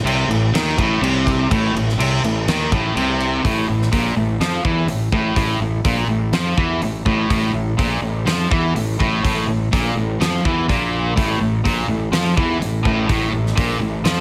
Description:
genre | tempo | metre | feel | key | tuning
hard rock | 124 BPM | 4/4 | straight | A minor | A4 = 440 Hz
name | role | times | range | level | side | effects
sludgy distorted guitar | riff | 0.0-14.2 s | A2 to F3 | -24 LUFS | equal | overdrive
fuzz fingered electric bass | bass | 0.0-14.2 s | A1 to F2 | -26 LUFS | equal | overdrive
biting overdriven guitar | riff | 0.1-14.2 s | A2 to F3 | -24 LUFS | equal | none
big rock drum kit | drums | 0.1-14.2 s | crash cymbal, hi-hat, kick drum, snare drum | -25 LUFS | equal | none
room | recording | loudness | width
moderate large studio reverb, RT60 0.9 s, small room ambience | none | -19 LUFS | mono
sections
0.0-3.4 A section; 3.4-14.2 B section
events
none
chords
0.0 Am; 3.4 A5

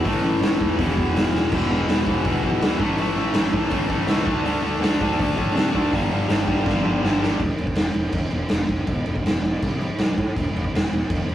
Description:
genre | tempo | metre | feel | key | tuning
punk rock | 163 BPM | 4/4 | straight | E minor | A4 = 440 Hz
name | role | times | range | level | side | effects
distorted electric guitar | riff | 0.0-7.4 s | E2 to D4 | -24 LUFS | left 3 dB | overdrive
tight distorted guitar | riff | 0.0-7.4 s | E2 to D4 | -28 LUFS | right 3 dB | distortion
fuzz picked electric bass | bass | 0.0-11.3 s | E1 to C3 | -26 LUFS | equal | overdrive
raw garage drum kit | drums | 0.1-11.3 s | crash cymbal, hi-hat, kick drum, snare drum | -22 LUFS | equal | none
room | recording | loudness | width
light reverb | rough rehearsal-room recording | -19 LUFS | side -12 dB against mid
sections
0.0-1.5 A section; 1.5-7.4 B section; 7.4-11.3 C section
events
drum fill 1.3, 6.7-7.4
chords
0.0 A5; 0.8 E5; 2.8 A5; 4.3 D5; 5.9 G5; 7.4 N.C.; 10.0 Asus2/B; 10.4 N.C.

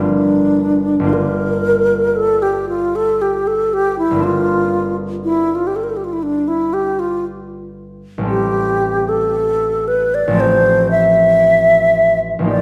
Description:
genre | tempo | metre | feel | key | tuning
classical, impressionist duo for alto flute and harp | 58 BPM | 4/4 | uneven beats, rubato | F major | A4 = 439 Hz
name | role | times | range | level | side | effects
hollow alto flute | melody | 0.0-12.6 s | D4 to E5 | -16 LUFS | equal | none
concert harp | accompaniment | 0.0-12.6 s | G1 to G4 | -23 LUFS | equal | none
room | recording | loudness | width
wet scoring stage reverb, RT60 1.6 s | recorded in a church or concert hall | -16 LUFS | mono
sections
0.0-12.6 A section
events
none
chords
0.0 Gm9; 4.2 C9sus4/G; 8.3 Am7; 10.4 Fadd9/A

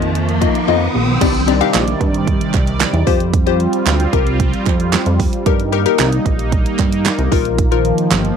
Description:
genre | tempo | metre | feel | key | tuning
dance-pop | 113 BPM | 4/4 | straight | C minor | A4 = 440 Hz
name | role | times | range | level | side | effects
glassy wavetable pluck | accompaniment | 0.0-8.1 s | Bb3 to F5 | -18 LUFS | left 16 dB | chorus, sidechain pumping
sweeping resonant pad | sustained chords | 0.0-8.4 s | C3 to D5 | -20 LUFS | right 2 dB | chorus, sidechain pumping
chorused synth bass | bass | 0.0-8.3 s | G1 to G2 | -18 LUFS | right 1 dB | sidechain pumping
pop drum kit | drums | 0.0-8.4 s | crash cymbal, handclaps, hi-hat, kick drum, snare drum | -18 LUFS | right 3 dB | none
riser | sound effects | 0.0-1.2 s | none | -20 LUFS | equal | none
group handclap | percussion | 1.7-8.2 s | none | -27 LUFS | right 16 dB | none
room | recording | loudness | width
little or no reverb | 1960s-style stereo with parts hard left and right | -13 LUFS | side -7 dB against mid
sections
0.0-1.2 A section; 1.2-8.4 B section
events
riser 0.0-1.2; drums muted 0.7-1.2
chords
0.0 Bbsus4; 1.2 Cmadd9; 3.1 Fsus2; 5.5 Eb; 7.3 Bbsus4

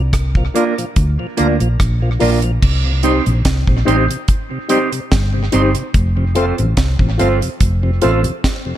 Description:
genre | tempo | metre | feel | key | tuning
roots reggae | 72 BPM | 4/4 | straight | C dorian | A4 = 440 Hz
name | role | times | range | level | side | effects
hollow-body short-scale fingered electric bass | bass | 0.0-8.2 s | F1 to D2 | -16 LUFS | equal | none
deep reggae drum kit | drums | 0.1-8.6 s | crash cymbal, hi-hat, kick drum, rim click, snare drum | -17 LUFS | equal | tape echo
tonewheel organ | accompaniment | 0.4-8.7 s | F2 to F4 | -24 LUFS | left 1 dB | slow rotary speaker
mellow electric guitar | accompaniment | 0.5-8.3 s | Bb3 to C5 | -21 LUFS | right 7 dB | phaser, tape echo
mellow reed electric piano | stabs | 0.5-8.2 s | Eb4 to D5 | -21 LUFS | left 5 dB | fast tremolo
room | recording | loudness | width
studio reverb | none | -13 LUFS | side -12 dB against mid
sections
0.0-2.6 A section; 2.6-8.8 B section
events
none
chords
0.0 Bb; 2.6 Cm; 5.9 F

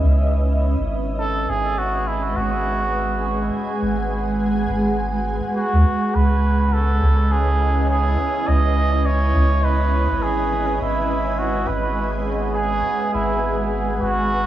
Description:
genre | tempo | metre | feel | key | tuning
ambient dub | 103 BPM | 4/4 | swing 57% on 16ths | C# minor | A4 = 439 Hz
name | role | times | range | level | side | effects
granular cloud pad | sustained chords | 0.0-14.5 s | G#3 to G#5 | -24 LUFS | equal | built-in reverb, cassette tape
soft dub sub bass | bass | 0.0-14.5 s | G#1 to D#2 | -20 LUFS | equal | tube saturation
trumpet with cup mute | melody | 1.2-14.5 s | E4 to D#5 | -23 LUFS | right 2 dB | cassette tape, dub echo
room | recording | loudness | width
moderate small room reverb, RT60 0.5 s | home recording on cassette, small room ambience | -18 LUFS | side -12 dB against mid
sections
0.0-14.5 A section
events
none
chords
0.0 C#m9; 1.5 G#m7; 6.1 C#m9; 10.8 G#m7

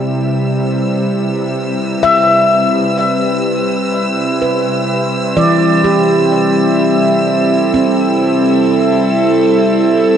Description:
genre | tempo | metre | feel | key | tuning
ambient | 63 BPM | 4/4 | straight | C major | A4 = 445 Hz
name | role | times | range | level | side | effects
warbly tape-like pad | sustained chords | 0.0-10.2 s | G3 to E5 | -14 LUFS | equal | chorus, built-in reverb, phaser
bowed-like drone | drone | 0.0-10.2 s | C3 to G3 | -20 LUFS | equal | built-in reverb
rich studio violin section | texture | 0.0-10.2 s | E6 | -24 LUFS | left 1 dB | none
handpan | arpeggios | 2.0-9.9 s | E3 to E5 | -14 LUFS | equal | diffuse ambient delay
room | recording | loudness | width
wet lush hall reverb, RT60 2.7 s | none | -11 LUFS | side -8 dB against mid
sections
0.0-10.2 A section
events
fade-in on ambient pad 0.0-10.2; fade-in on violin section 0.0-10.2; fade-out on synth drone 0.0-10.2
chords
0.0 Cmaj7

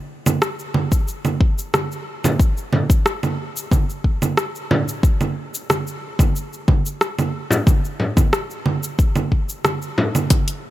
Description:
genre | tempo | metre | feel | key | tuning
downtempo | 91 BPM | 4/4 | straight | none | none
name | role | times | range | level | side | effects
deep house drum kit | drums | 0.3-10.6 s | congas, hi-hat, rim click, shaker | -21 LUFS | right 2 dB | small room ambience
electronic kick drum | drums | 0.9-10.4 s | none | -16 LUFS | left 1 dB | small room ambience
frame drum | percussion | 2.2-10.1 s | none | -22 LUFS | left 2 dB | none
room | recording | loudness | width
little or no reverb | none | -17 LUFS | side -15 dB against mid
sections
0.0-10.7 A section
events
none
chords
none

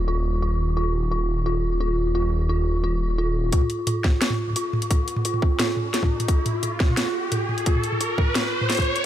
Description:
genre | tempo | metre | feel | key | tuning
half-time drum and bass | 174 BPM | 4/4 | half-time | unclear | A4 = 440 Hz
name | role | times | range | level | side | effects
dark detuned synth bell | arpeggios | 0.0-9.1 s | F4 | -26 LUFS | equal | chorus, phaser, dub echo
phased detuned saw bass | bass | 0.0-3.5 s | Eb1 | -23 LUFS | equal | phaser, tube saturation
drum and bass drum kit | drums | 3.5-9.0 s | hi-hat, snare drum, toms | -25 LUFS | equal | overdrive, small room ambience
electronic kick drum | drums | 3.5-8.9 s | none | -20 LUFS | equal | overdrive, small room ambience
riser | sound effects | 5.1-9.1 s | none | -28 LUFS | equal | none
room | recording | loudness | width
light reverb | none | -20 LUFS | side -11 dB against mid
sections
0.0-3.5 A section; 3.5-9.1 B section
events
build-up 3.5-9.1; filter sweep 3.5-9.1; riser 5.1-9.1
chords
0.0 Ebsus2; 3.5 N.C.

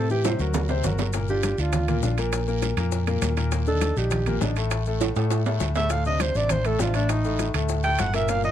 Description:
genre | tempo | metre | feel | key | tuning
Afro-Cuban jazz | 201 BPM | 4/4 | straight | unclear | A4 = 439 Hz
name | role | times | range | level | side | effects
breathy alto saxophone | melody | 0.0-8.5 s | D4 to G5 | -26 LUFS | right 2 dB | none
clear concert grand piano | accompaniment | 0.0-8.5 s | A2 to C5 | -28 LUFS | left 4 dB | none
fingered electric bass | bass | 0.0-8.5 s | G1 to A2 | -25 LUFS | equal | none
bongos | percussion | 0.1-8.4 s | none | -35 LUFS | left 9 dB | none
congas | percussion | 0.1-8.5 s | none | -33 LUFS | right 1 dB | none
maracas | percussion | 0.1-8.5 s | none | -40 LUFS | left 10 dB | none
timbales | percussion | 0.2-8.4 s | none | -31 LUFS | right 9 dB | none
guiro | percussion | 0.3-8.5 s | none | -39 LUFS | right 9 dB | none
room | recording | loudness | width
light reverb | close, detailed microphones | -21 LUFS | side -11 dB against mid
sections
0.0-1.1 A section; 1.1-8.5 B section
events
drum fill 0.2-1.1, 5.0-5.9; alto saxophone solo 1.1-8.5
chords
0.0 Am7; 0.5 Daug7; 1.1 Gm7; 2.3 Bb5; 3.5 Ebmaj7; 4.7 D5; 7.1 Asus4; 7.7 D5

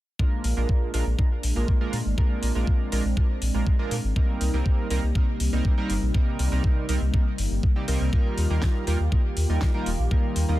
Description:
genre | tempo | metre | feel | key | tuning
progressive house | 121 BPM | 4/4 | straight | unclear | A4 = 442 Hz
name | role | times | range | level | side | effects
lush unison pad | sustained chords | 0.5-10.6 s | C3 to G4 | -33 LUFS | equal | chorus, phaser, sidechain pumping
chorused polysynth | stabs | 0.2-10.6 s | G3 to Bb4 | -31 LUFS | right 3 dB | vintage 12-bit sampler grit, sidechain pumping, tape echo
electronic kick drum | drums | 0.2-10.2 s | none | -22 LUFS | equal | none
round analog bass | bass | 0.4-10.6 s | Eb1 to Bb2 | -24 LUFS | equal | tube saturation, sidechain pumping
deep house drum kit | drums | 0.4-10.5 s | hi-hat, snare drum | -35 LUFS | left 2 dB | overdrive, sidechain pumping on hats
room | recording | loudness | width
little or no reverb | none | -22 LUFS | side -16 dB against mid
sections
0.2-10.6 A section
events
filter sweep on analog synth pad 0.2-10.6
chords
0.2 Bb7; 4.2 Cm7; 8.1 Ebadd9

